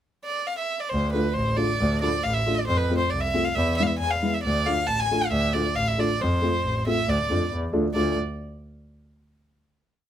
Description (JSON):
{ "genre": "klezmer", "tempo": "136 BPM", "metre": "2/4", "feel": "straight", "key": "D dorian sharp4", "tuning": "A4 = 440 Hz", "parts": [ { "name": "warm violin", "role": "melody", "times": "0.2-8.2 s", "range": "B4 to A5", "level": "-26 LUFS", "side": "right 1 dB", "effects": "none" }, { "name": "clear double bass", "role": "bass", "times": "0.9-8.2 s", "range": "A1 to F2", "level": "-26 LUFS", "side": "equal", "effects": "none" }, { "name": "dark upright piano", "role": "accompaniment", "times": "1.1-8.2 s", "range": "G#3 to F4", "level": "-27 LUFS", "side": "left 1 dB", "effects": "none" } ], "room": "light reverb", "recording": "none", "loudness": "-22 LUFS", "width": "side -10 dB against mid", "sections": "0.0-0.9 pickup bar; 0.9-8.0 A section; 8.0-8.8 final chord", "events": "none", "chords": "0.0 N.C.; 0.9 Dm; 2.7 F; 3.6 E; 4.4 Dm; 6.2 F; 7.1 Dm" }